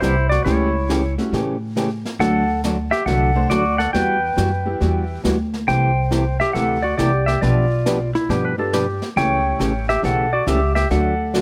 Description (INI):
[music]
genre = country, western swing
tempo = 138 BPM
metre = 4/4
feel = swing 66% on 8ths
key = unclear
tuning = A4 = 440 Hz
[part]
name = pedal steel guitar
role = melody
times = 0.0-11.4 s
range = E4 to G5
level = -23 LUFS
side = equal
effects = none
[part]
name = archtop guitar, miked and amplified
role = accompaniment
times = 0.0-11.4 s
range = B2 to B4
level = -25 LUFS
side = equal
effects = none
[part]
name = upright bass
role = bass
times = 0.0-11.4 s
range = A1 to A2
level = -24 LUFS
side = equal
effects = none
[part]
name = jazz brush drum kit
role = drums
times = 0.0-11.4 s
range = brushed snare drum, hi-hat, snare drum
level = -32 LUFS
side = equal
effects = none
[part]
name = tack piano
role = accompaniment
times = 0.5-5.2, 8.6-11.4 s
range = F#3 to C5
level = -29 LUFS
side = equal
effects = none
[part]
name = clean lap steel guitar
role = second line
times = 8.2-9.1 s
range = E4 to B4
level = -26 LUFS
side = equal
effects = none
[sound]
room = light reverb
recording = none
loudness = -19 LUFS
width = mono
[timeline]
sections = 0.0-11.4 A section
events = none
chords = 0.5 A7/C#; 2.2 D; 3.9 Emadd9; 5.7 C6; 7.4 G7/B; 9.2 A7; 10.9 D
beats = 0.02 | 0.46 0.89 1.33 1.76 | 2.20 2.63 3.07 3.51 | 3.94 4.38 4.81 5.25 | 5.68 6.12 6.55 6.99 | 7.42 7.86 8.29 8.73 | 9.16 9.60 10.03 10.47 | 10.90 11.34